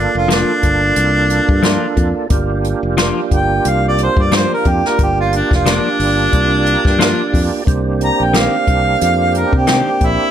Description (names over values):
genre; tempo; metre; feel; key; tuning
straight-eighth soul blues; 90 BPM; 4/4; swing 55% on 16ths; G minor; A4 = 440 Hz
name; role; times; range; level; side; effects
warm harmonica; melody; 0.0-10.3 s; D4 to Bb5; -16 LUFS; equal; overdrive
percussive tonewheel organ; accompaniment; 0.0-10.3 s; Bb3 to Bb5; -19 LUFS; right 6 dB; slow rotary speaker, overdrive, chorus vibrato
fingered electric bass; bass; 0.0-10.2 s; F1 to C3; -18 LUFS; left 1 dB; none
clean electric guitar; stabs; 0.3-9.9 s; Eb3 to G4; -19 LUFS; left 5 dB; none
jazz brush drum kit; drums; 0.3-10.2 s; hi-hat, kick drum, snare drum; -17 LUFS; equal; none
room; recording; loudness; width
small room ambience; none; -12 LUFS; side -9 dB against mid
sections
0.0-10.3 A section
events
harmonica solo 0.0-10.3; tonewheel organ fill 6.3-7.7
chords
0.0 Gm7; 7.7 Cm7